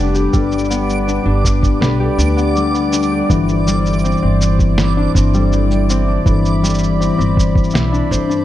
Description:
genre	folktronica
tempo	81 BPM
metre	4/4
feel	straight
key	unclear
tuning	A4 = 439 Hz
part	warm analog pad	sustained chords	0.0-8.4 s	G3 to B5	-23 LUFS	right 2 dB	chorus
part	concert harp	arpeggios	0.0-8.4 s	E3 to C5	-17 LUFS	left 4 dB	tape echo
part	upright bass	bass	0.0-8.4 s	F1 to G2	-17 LUFS	right 1 dB	tube saturation
part	backwards swelling texture	texture	0.0-8.4 s	D6	-27 LUFS	right 2 dB	built-in reverb
part	electronic shaker and snare drum	drums	0.1-8.4 s	none	-23 LUFS	right 1 dB	none
part	electronic kick drum	drums	0.3-8.3 s	none	-16 LUFS	equal	none
room	digital ambience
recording	dark, warm production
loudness	-12 LUFS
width	side -13 dB against mid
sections	0.0-8.4 A section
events	none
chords	0.0 G; 3.3 Cadd9/G

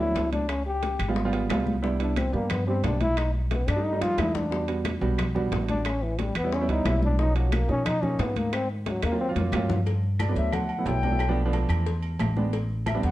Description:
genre	Afro-Cuban jazz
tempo	180 BPM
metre	4/4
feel	straight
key	unclear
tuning	A4 = 441 Hz
part	breathy trombone	melody	0.0-9.3 s	Eb3 to G4	-28 LUFS	left 2 dB	none
part	dark baby grand piano	accompaniment	0.0-13.1 s	E#3 to G4	-29 LUFS	right 3 dB	none
part	upright bass	bass	0.0-13.1 s	G#1 to B2	-27 LUFS	equal	none
part	congas	percussion	0.0-13.1 s	none	-33 LUFS	left 2 dB	none
part	bongos and cowbell	percussion	0.2-13.1 s	none	-38 LUFS	left 6 dB	none
part	timbales and agogo bells	percussion	0.2-13.0 s	none	-37 LUFS	right 7 dB	none
part	claves	percussion	0.5-13.0 s	none	-40 LUFS	left 2 dB	none
part	reedy silver concert flute	second line	10.2-13.1 s	D5 to G5	-31 LUFS	left 5 dB	none
room	light reverb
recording	dark, warm production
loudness	-23 LUFS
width	side -15 dB against mid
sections	0.0-9.9 A section; 9.9-13.1 A section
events	trombone solo 0.0-9.9; drum fill 3.5-4.5, 8.9-9.9; flute solo 9.9-13.1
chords	0.5 C#7#11; 1.8 Cmaj9; 3.2 B7alt; 4.5 Em9; 5.9 A9; 7.2 Bmaj9#11; 8.5 Ab13; 9.9 Gmaj9; 11.2 Bm7b5; 11.9 E7b13; 12.5 Am11

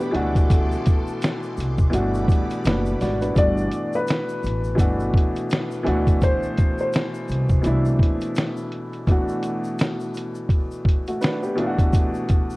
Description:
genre	lo-fi hip hop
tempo	84 BPM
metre	4/4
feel	swing 59% on 16ths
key	G major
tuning	A4 = 440 Hz
part	warm upright piano	accompaniment	0.0-12.6 s	B2 to D5	-25 LUFS	equal	low-pass filter
part	string machine, violins	sustained chords	0.0-3.3 s	G3 to D6	-36 LUFS	right 1 dB	phaser, ensemble chorus, low-pass filter
part	tube shaker	percussion	0.0-12.6 s	none	-51 LUFS	left 3 dB	none
part	lo-fi sampler-style drum kit	drums	0.1-12.5 s	hi-hat, kick drum, snare drum	-20 LUFS	equal	none
part	upright bass	bass	0.2-7.9 s	F#1 to D2	-24 LUFS	equal	tube saturation
part	felt-muted upright piano	melody	3.4-8.5 s	B4 to D5	-27 LUFS	left 1 dB	low-pass filter, tape echo
room	little or no reverb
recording	worn, warbling old tape, cassette tape, warbly pitch drift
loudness	-19 LUFS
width	side -22 dB against mid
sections	0.0-3.4 A section; 3.4-12.6 B section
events	none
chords	0.1 D7; 1.9 Gmaj7; 5.9 D7; 9.1 Gmaj13/B

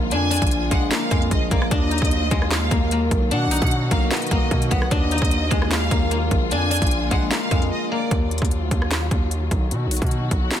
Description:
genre	hip hop, trap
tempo	150 BPM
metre	4/4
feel	half-time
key	Eb harmonic minor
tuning	A4 = 440 Hz
part	guzheng	melody	0.0-10.6 s	Ab3 to Eb4	-25 LUFS	left 2 dB	low-pass filter
part	dark symphonic string section	sustained chords	0.0-10.6 s	B2 to F#4	-29 LUFS	left 2 dB	none
part	distorted 808-style bass	bass	0.0-10.5 s	Bb1 to B2	-24 LUFS	equal	distortion
part	warm studio violin section	second line	0.1-8.1 s	D5 to Ab5	-27 LUFS	right 1 dB	digital delay
part	trap drum kit	drums	0.1-10.6 s	handclaps, hi-hat, kick drum, rim click, snare drum	-22 LUFS	equal	none
room	small room ambience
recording	dense, heavily limited modern master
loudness	-18 LUFS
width	side -10 dB against mid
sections	0.0-8.1 A section; 8.1-10.6 B section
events	break 7.7-8.1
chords	0.1 Bb; 1.7 Ebmadd9; 3.3 B; 4.9 Ebmadd9; 6.5 Bb; 8.1 Ebmadd9; 9.7 B

